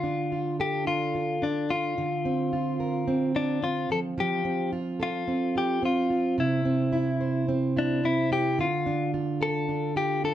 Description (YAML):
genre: acoustic pop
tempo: 109 BPM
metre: 4/4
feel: straight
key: D minor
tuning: A4 = 441 Hz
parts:
  - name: direct-recorded clean electric guitar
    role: melody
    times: 0.0-10.3 s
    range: D4 to A4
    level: -28 LUFS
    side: left 4 dB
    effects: none
  - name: fingerpicked plugged-in steel-string acoustic guitar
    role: accompaniment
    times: 0.0-10.3 s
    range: C3 to C5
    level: -27 LUFS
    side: right 2 dB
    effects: none
room: moderate studio ambience, RT60 0.5 s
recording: dark, warm production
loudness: -24 LUFS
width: side -11 dB against mid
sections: 0.0-10.3 A section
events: none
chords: 0.0 Dm; 2.0 Bbadd9/D; 3.9 F; 6.4 C; 8.6 Dm